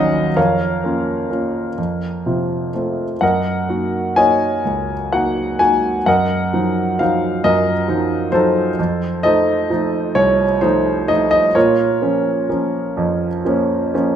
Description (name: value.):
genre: classical, lyrical solo piano.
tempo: 42 BPM (dotted quarters).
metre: 6/8.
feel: rubato.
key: Bb minor.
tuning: A4 = 440 Hz.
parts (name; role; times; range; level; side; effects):
warm concert grand piano; solo; 0.0-14.2 s; Bb1 to Ab5; -15 LUFS; equal; none.
room: moderate recital hall reverb, RT60 1.5 s.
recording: none.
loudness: -15 LUFS.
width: side -9 dB against mid.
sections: 0.0-14.2 A section.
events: none.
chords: 0.4 Bbm/F; 1.8 F; 3.2 Gb6; 6.1 Ebmadd9/Gb; 8.8 F7; 11.6 Bbm.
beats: | 0.37 1.78 | 3.22 4.66 | 6.07 7.43 | 8.78 10.16 | 11.56 12.98.